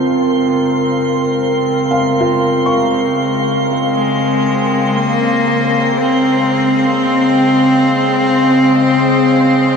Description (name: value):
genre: ambient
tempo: free time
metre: none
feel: none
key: Bb minor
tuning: A4 = 440 Hz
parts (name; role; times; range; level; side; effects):
- warbly tape-like pad; sustained chords; 0.0-9.8 s; Db3 to F5; -14 LUFS; equal; chorus, built-in reverb
- felt-muted upright piano; arpeggios; 0.0-9.8 s; F3 to Db6; -24 LUFS; left 1 dB; tape echo
- drifting glass-harmonics texture; texture; 0.0-9.8 s; C6; -23 LUFS; right 3 dB; chorus, built-in reverb
- clear cello; melody; 3.9-9.8 s; Ab3 to C4; -13 LUFS; left 2 dB; none
room: wet shimmer reverb, RT60 8.7 s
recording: cassette tape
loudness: -11 LUFS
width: side -6 dB against mid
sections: 0.0-9.8 A section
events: none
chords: 0.0 Bbm9